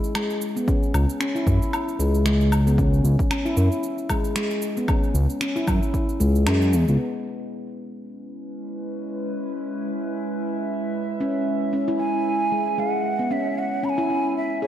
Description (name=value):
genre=organic downtempo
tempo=114 BPM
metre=4/4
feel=swing 56% on 16ths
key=C# minor pentatonic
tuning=A4 = 441 Hz
part: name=handpan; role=arpeggios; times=0.0-7.0, 11.2-14.7 s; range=G#3 to G#4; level=-25 LUFS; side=left 1 dB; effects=tape echo
part: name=electronic shaker, finger snaps and woodblock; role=drums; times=0.0-7.0 s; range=none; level=-30 LUFS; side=left 1 dB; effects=none
part: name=electronic kick drum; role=drums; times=0.7-6.1 s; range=none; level=-24 LUFS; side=equal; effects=none
part: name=smooth synth bass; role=bass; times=0.9-7.0 s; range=C#2 to F#2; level=-18 LUFS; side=equal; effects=none
part: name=warbly tape-like pad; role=sustained chords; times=8.1-14.7 s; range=G#3 to E5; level=-28 LUFS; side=right 1 dB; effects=chorus, built-in reverb, vintage 12-bit sampler grit, sidechain pumping
part: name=breathy hollow bansuri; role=melody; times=12.0-14.7 s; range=C#5 to B5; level=-24 LUFS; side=right 2 dB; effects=tape echo
room=moderate lush hall reverb, RT60 1.8 s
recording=dreamy mix soaked in reverb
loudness=-20 LUFS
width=side -11 dB against mid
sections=0.0-7.0 A section; 7.0-14.7 B section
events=none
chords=0.0 C#m; 7.0 C#m7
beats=0.15 | 0.68 1.20 1.73 2.26 | 2.78 3.31 3.83 4.36 | 4.89 5.41 5.94 6.47 | 6.99 7.52 8.04 8.57 | 9.10 9.62 10.15 10.68 | 11.20 11.73 12.26 12.78 | 13.31 13.84 14.36